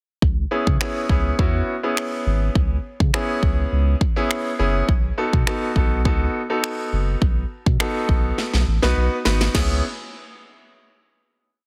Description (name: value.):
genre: dance-pop.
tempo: 103 BPM.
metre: 4/4.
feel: straight.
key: C# minor.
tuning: A4 = 440 Hz.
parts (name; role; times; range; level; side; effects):
warm sub bass; bass; 0.2-9.8 s; F#1 to C#3; -23 LUFS; equal; sidechain pumping.
house drum kit; drums; 0.2-9.7 s; crash cymbal, finger snaps, kick drum, snare drum; -24 LUFS; equal; none.
bright concert grand piano; accompaniment; 0.5-9.8 s; B3 to B4; -26 LUFS; equal; sidechain pumping.
room: light reverb.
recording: heavily compressed radio sound.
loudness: -21 LUFS.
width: mono.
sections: 0.2-9.5 verse; 9.5-11.7 final chord.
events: drum fill 8.4-9.5.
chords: 0.2 C#m7; 4.9 B7; 9.5 C#m7.